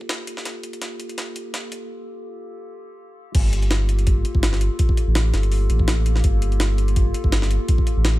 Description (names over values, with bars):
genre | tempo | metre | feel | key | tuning
drum and bass, jungle | 166 BPM | 4/4 | swing 54% on 16ths | G minor | A4 = 441 Hz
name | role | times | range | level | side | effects
warbly tape-like pad | sustained chords | 0.0-8.2 s | Bb3 to A4 | -31 LUFS | left 2 dB | chorus, built-in reverb
jungle sampler-style drum kit | drums | 0.0-8.1 s | crash cymbal, hi-hat, kick drum, snare drum | -21 LUFS | equal | high-pass filter on hats, studio reverb, high-pass filter on kick, high-pass filter on snare, high-pass filter on cymbals
saturated sub bass | bass | 3.3-8.2 s | G1 to A1 | -19 LUFS | equal | tube saturation
room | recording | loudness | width
digital ambience | high-pass filter | -18 LUFS | side -17 dB against mid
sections
0.0-3.3 A section; 3.3-8.2 B section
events
build-up 0.0-3.3; filter sweep on ambient pad 0.0-3.3; filter sweep 0.0-3.3; drum fill 0.5-1.9; break 1.9-3.3; drop 3.3-8.2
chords
0.0 Gm9